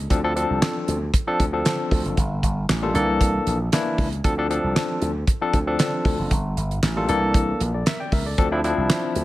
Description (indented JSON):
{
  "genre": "early-eighties boogie funk",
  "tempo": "116 BPM",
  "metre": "4/4",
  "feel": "straight",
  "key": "D minor",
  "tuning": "A4 = 440 Hz",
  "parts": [
    { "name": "slap bass with an envelope filter", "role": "bass", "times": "0.0-9.2 s", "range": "F#1 to D3", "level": "-25 LUFS", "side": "equal", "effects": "none" },
    { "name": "barky tine electric piano", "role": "accompaniment", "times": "0.1-9.2 s", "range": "D3 to G5", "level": "-23 LUFS", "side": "left 2 dB", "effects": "medium stereo tremolo" },
    { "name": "damped 70s drum kit", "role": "drums", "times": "0.1-9.2 s", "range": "handclaps, hi-hat, kick drum, snare drum", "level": "-23 LUFS", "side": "right 1 dB", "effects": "gated reverb" }
  ],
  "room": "light reverb, small room ambience",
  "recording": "none",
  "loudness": "-20 LUFS",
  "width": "side -16 dB against mid",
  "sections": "0.0-9.2 A section",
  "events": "none",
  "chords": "0.1 Dm7; 2.2 Gm9; 2.9 C13; 4.2 Dm7; 6.3 Gm9; 7.1 C13; 8.4 Dm7"
}